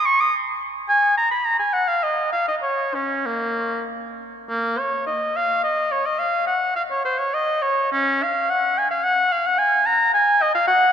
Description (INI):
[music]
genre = classical, baroque-style fantasia for unaccompanied oboe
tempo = 93-111 BPM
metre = 3/4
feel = rubato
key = Bb minor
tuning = A4 = 435 Hz
[part]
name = clear oboe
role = solo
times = 0.0-10.9 s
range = Bb3 to Eb6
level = -18 LUFS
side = equal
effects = none
[sound]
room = wet cathedral reverb, RT60 4.4 s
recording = minimal, uncompressed stereo recording, faint mains hum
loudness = -18 LUFS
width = side -8 dB against mid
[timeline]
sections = 0.0-4.5 A section; 4.5-10.9 B section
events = none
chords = none